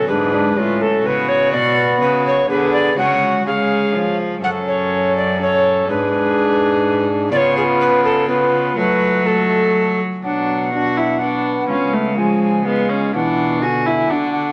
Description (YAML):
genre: classical, renaissance-style consort dance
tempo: 124 BPM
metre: 3/4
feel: straight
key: F# harmonic minor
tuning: A4 = 439 Hz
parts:
  - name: alto recorder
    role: melody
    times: 0.0-14.5 s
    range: G#4 to G#5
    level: -22 LUFS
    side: equal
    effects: none
  - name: warm viola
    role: second line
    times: 0.0-14.5 s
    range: G#3 to A4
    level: -23 LUFS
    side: equal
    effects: none
  - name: concert harp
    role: accompaniment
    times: 0.0-14.5 s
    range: F#2 to D5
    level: -29 LUFS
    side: equal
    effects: none
  - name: warm trombone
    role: accompaniment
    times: 0.0-14.5 s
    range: D3 to D4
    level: -23 LUFS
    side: equal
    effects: none
  - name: rich cello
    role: bass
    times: 0.0-14.5 s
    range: F#2 to F#3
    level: -25 LUFS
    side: equal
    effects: none
room: wet stone room reverb, RT60 1.1 s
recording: vinyl crackle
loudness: -17 LUFS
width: mono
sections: 0.0-10.2 A section; 10.2-14.5 B section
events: none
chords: 0.1 G#dim; 1.5 Bm; 3.0 C#sus4; 3.5 C#; 4.4 F#m; 5.9 G#dim; 7.3 C#7; 8.8 F#m; 10.2 Bm; 11.7 C#; 13.1 Bm